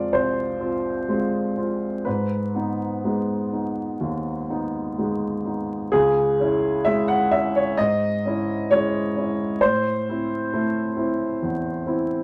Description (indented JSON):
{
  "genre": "neoclassical minimalist piano",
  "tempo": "61-67 BPM",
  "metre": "4/4",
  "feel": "rubato",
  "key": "C# minor",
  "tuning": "A4 = 440 Hz",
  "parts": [
    { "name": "warm upright piano", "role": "solo", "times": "0.0-12.2 s", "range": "C2 to F#5", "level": "-23 LUFS", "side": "equal", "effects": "none" }
  ],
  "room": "light reverb",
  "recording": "vinyl crackle",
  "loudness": "-23 LUFS",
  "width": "mono",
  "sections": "0.0-5.9 A section; 5.9-12.2 B section",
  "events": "none",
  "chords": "0.0 Fm; 2.1 G#m; 5.9 C#m; 9.6 Am"
}